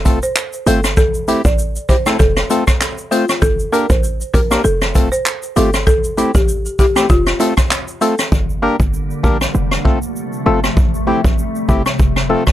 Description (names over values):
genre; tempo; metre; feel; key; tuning
dancehall; 98 BPM; 4/4; swing 56% on 16ths; unclear; A4 = 440 Hz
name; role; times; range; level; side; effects
short 808-style bass; bass; 0.0-12.5 s; E1 to Bb1; -19 LUFS; equal; tube saturation
percussive organ stab; accompaniment; 0.1-12.4 s; A3 to C5; -15 LUFS; left 1 dB; chorus, sidechain pumping
vintage brush drum kit; drums; 0.1-12.5 s; handclaps, hi-hat, kick drum, rim click, shaker; -15 LUFS; equal; none
egg shaker and timbales; percussion; 0.1-12.5 s; none; -32 LUFS; right 5 dB; none
folk marimba with medium hard mallets; melody; 0.2-8.1 s; F4 to D5; -20 LUFS; equal; tape echo
glassy FM pad; sustained chords; 8.6-12.5 s; C3 to Bb3; -22 LUFS; left 1 dB; ensemble chorus, built-in reverb, sidechain pumping
room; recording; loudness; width
little or no reverb; dry, gritty hardware recording; -13 LUFS; side -13 dB against mid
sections
0.0-8.3 A section; 8.3-12.5 B section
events
hi-hats muted 8.3-12.5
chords
0.0 F; 1.0 Am7; 2.2 F; 3.4 Gm; 4.6 F; 5.9 Am7; 7.1 F; 8.3 Gm; 9.5 F; 10.8 Am7; 12.0 F